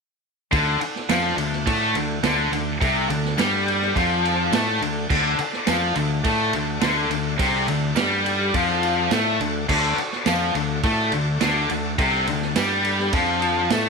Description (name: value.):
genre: classic rock.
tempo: 105 BPM.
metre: 4/4.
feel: straight.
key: D mixolydian.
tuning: A4 = 440 Hz.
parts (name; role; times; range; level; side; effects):
bright tonewheel organ; sustained chords; 0.5-13.9 s; D4 to F#5; -32 LUFS; equal; slow rotary speaker, overdrive.
tight distorted guitar; riff; 0.5-13.9 s; C3 to A3; -23 LUFS; left 14 dB; distortion.
tight distorted guitar; riff; 0.5-13.9 s; C3 to A3; -25 LUFS; right 14 dB; distortion.
growling fingered electric bass; bass; 0.5-13.9 s; C2 to A2; -27 LUFS; equal; overdrive.
vintage drum kit; drums; 0.5-13.8 s; crash cymbal, kick drum, ride cymbal, snare drum; -26 LUFS; right 4 dB; none.
tambourine; percussion; 1.1-13.8 s; none; -40 LUFS; right 15 dB; none.
room: light reverb, studio reverb.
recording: 1960s-style stereo with parts hard left and right.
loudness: -19 LUFS.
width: side -4 dB against mid.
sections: 0.5-13.9 A section.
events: none.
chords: 0.5 D.